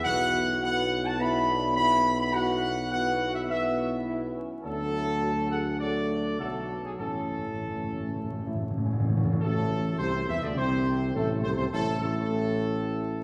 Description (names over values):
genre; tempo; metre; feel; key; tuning
classical; 104 BPM; 4/4; straight; unclear; A4 = 440 Hz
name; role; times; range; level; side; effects
clear trumpet section; melody; 0.0-13.2 s; G#4 to B5; -32 LUFS; equal; none
mellow French horn section; sustained chords; 0.0-13.2 s; A3 to A4; -38 LUFS; equal; none
warm trombone section; sustained chords; 0.0-13.2 s; A2 to C#4; -36 LUFS; equal; none
dark tuba; bass; 0.1-13.2 s; A1 to E2; -34 LUFS; equal; none
timpani; percussion; 7.0-9.4 s; A2; -32 LUFS; equal; none
room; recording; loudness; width
wet scoring stage reverb, RT60 1.8 s; recorded in a church or concert hall, vinyl crackle; -28 LUFS; mono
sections
0.0-9.4 A section; 9.4-13.2 B section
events
timpani fill 7.0-9.4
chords
0.1 Bsus4; 4.6 D; 7.0 A; 9.4 Am